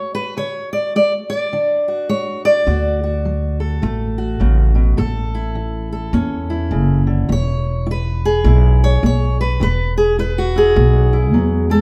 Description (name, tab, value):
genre	acoustic country blues, solo or duo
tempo	104 BPM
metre	4/4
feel	swing 61% on 8ths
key	unclear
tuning	A4 = 442 Hz
part	fingerpicked steel-string acoustic guitar	melody	0.0-11.8 s	A2 to D5	-21 LUFS	equal	none
part	upright bass	bass	2.7-11.8 s	E1 to E2	-18 LUFS	equal	none
room	moderate large studio reverb, RT60 1.2 s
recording	band playing live in one room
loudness	-17 LUFS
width	mono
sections	0.0-11.8 A section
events	none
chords	0.0 D; 5.0 A; 7.3 E